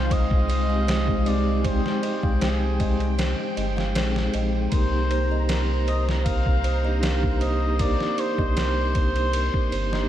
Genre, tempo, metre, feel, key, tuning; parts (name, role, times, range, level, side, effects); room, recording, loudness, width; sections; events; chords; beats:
trip hop; 78 BPM; 4/4; straight; C minor; A4 = 441 Hz
trumpet with cup mute; melody; 0.0-10.1 s; Ab4 to F5; -30 LUFS; left 2 dB; tape echo
vibraphone with medium mallets; accompaniment; 0.0-10.1 s; Ab3 to G5; -29 LUFS; right 1 dB; harmonic tremolo, vintage 12-bit sampler grit, tape echo
string machine, cellos; sustained chords; 0.0-10.1 s; Ab3 to C6; -31 LUFS; equal; ensemble chorus
warm sub bass; bass; 0.0-10.1 s; G1 to C2; -24 LUFS; equal
music box; arpeggios; 0.1-10.1 s; Bb4 to F5; -33 LUFS; right 4 dB; tape echo
trip hop sampler-style drum kit; drums; 0.1-10.1 s; kick drum, ride cymbal, snare drum; -27 LUFS; equal
moderate cathedral reverb, RT60 5.8 s; dreamy mix soaked in reverb; -21 LUFS; side -11 dB against mid
0.0-10.1 A section
0.0 Fm7/C; 4.7 Cm7
0.10 0.87 | 1.64 2.41 3.18 3.95 | 4.72 5.49 6.26 7.03 | 7.79 8.56 9.33